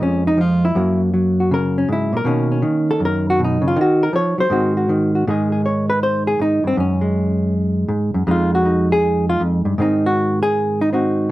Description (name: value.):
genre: solo jazz.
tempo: 159 BPM.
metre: 4/4.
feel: swing 66% on 8ths.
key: Ab major from 5.3 s.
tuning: A4 = 440 Hz.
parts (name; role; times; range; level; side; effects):
hollow-body jazz guitar; solo; 0.0-11.3 s; F2 to Db5; -15 LUFS; equal; none.
room: moderate studio reverb, RT60 0.5 s.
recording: none.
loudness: -15 LUFS.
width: side -16 dB against mid.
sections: 0.0-5.3 A section; 5.3-11.3 A section.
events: hollow-body jazz guitar solo 0.0-5.3, 5.3-11.3.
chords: 0.0 Bbm7 (rootless); 0.7 Gb; 2.2 Cbmaj9; 3.8 Ebm; 4.5 Ab7; 5.3 Ab5; 6.8 Gbsus2; 8.3 Fm7; 9.8 Ab7.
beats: 0.00 0.37 | 0.75 1.12 1.50 1.87 | 2.25 2.62 3.00 3.38 | 3.75 4.13 4.50 4.88 | 5.25 5.63 6.01 6.38 | 6.76 7.14 7.51 7.89 | 8.27 8.65 9.02 9.40 | 9.78 10.16 10.53 10.91 | 11.29.